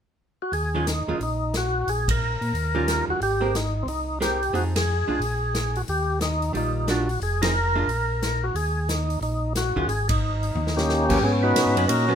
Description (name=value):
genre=soul jazz organ trio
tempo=180 BPM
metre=4/4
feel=swing 63% on 8ths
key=Eb mixolydian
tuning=A4 = 440 Hz
part: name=percussive tonewheel organ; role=melody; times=0.4-12.2 s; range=Bb3 to Cb5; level=-25 LUFS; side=equal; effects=slow rotary speaker, overdrive
part: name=mellow tonewheel organ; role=bass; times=0.5-12.2 s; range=F1 to Cb3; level=-26 LUFS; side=equal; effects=slow rotary speaker
part: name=swinging big-band drum kit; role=drums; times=0.5-12.0 s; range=crash cymbal, hi-hat, kick drum, ride cymbal, snare drum, toms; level=-30 LUFS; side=equal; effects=none
part: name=archtop guitar, miked and amplified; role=accompaniment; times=0.7-12.2 s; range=Eb3 to Bb4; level=-27 LUFS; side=right 3 dB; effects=none
room=moderate studio reverb, RT60 0.5 s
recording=minimal, uncompressed stereo recording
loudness=-21 LUFS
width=side -8 dB against mid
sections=0.5-11.2 A section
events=band accent 2.0, 4.7, 7.4, 10.0; drum fill 10.6-10.9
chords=0.0 N.C.; 0.5 Eb9sus4; 1.9 Absus2/Bb; 2.5 Eb9; 3.2 Abmaj9; 4.5 Fm7; 5.2 Gbadd9/Bb (rootless); 5.9 Ebmaj9; 7.2 Fm7; 7.9 Gb/Bb; 8.5 Ebsus4; 10.6 Eb7; 11.2 Abm11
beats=0.19 | 0.52 0.86 1.19 1.53 | 1.86 2.19 2.53 2.86 | 3.20 3.53 3.87 4.20 | 4.54 4.87 5.20 5.54 | 5.87 6.21 6.54 6.88 | 7.21 7.54 7.88 8.21 | 8.55 8.88 9.21 9.55 | 9.88 10.22 10.55 10.88 | 11.22 11.55 11.88